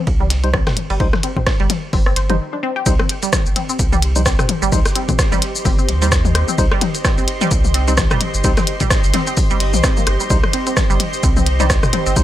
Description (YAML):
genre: minimal techno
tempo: 129 BPM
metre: 4/4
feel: swing 57% on 16ths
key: C minor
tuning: A4 = 439 Hz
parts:
  - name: saturated sub bass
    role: bass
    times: 0.1-12.2 s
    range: G1 to Eb2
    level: -18 LUFS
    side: equal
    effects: sidechain pumping
  - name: dusty soul sampler-style drum kit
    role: drums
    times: 0.1-12.2 s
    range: hi-hat, ride cymbal, snare drum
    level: -32 LUFS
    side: right 3 dB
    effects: sidechain pumping on cymbals, high-pass filter on cymbals, high-pass filter on snare, sidechain pumping on hats, high-pass filter on hats
  - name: electronic kick drum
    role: drums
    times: 0.1-12.2 s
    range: none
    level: -18 LUFS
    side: equal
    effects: none
  - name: resonant blip pluck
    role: riff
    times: 0.2-12.1 s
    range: G3 to C5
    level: -24 LUFS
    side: right 2 dB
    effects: analog chorus, sidechain pumping, dub echo
  - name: garage drum kit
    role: percussion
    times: 0.2-12.2 s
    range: rim click, toms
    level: -23 LUFS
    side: left 5 dB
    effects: tape echo
  - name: minimal click drum kit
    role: drums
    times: 0.3-12.2 s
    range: hi-hat, rim click, shaker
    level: -20 LUFS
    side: equal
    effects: none
  - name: percussive organ stab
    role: stabs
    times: 0.4-12.2 s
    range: G3 to C5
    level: -25 LUFS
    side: left 1 dB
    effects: chorus, vintage 12-bit sampler grit, tape echo
  - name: granular cloud pad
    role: texture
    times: 3.7-12.2 s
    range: G4 to C6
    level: -25 LUFS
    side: right 1 dB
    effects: built-in reverb, sidechain pumping
room: digital ambience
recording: none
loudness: -14 LUFS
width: side -13 dB against mid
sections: 0.0-2.9 A section; 2.9-12.2 B section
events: filter sweep on synth stab 0.0-2.9; break 2.4-2.9; drop 2.9-12.2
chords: 0.0 Cm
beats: 0.07 0.54 | 1.00 1.47 1.93 2.40 | 2.86 3.33 3.79 4.26 | 4.72 5.19 5.65 6.12 | 6.58 7.05 7.51 7.98 | 8.44 8.91 9.37 9.84 | 10.30 10.77 11.23 11.70 | 12.16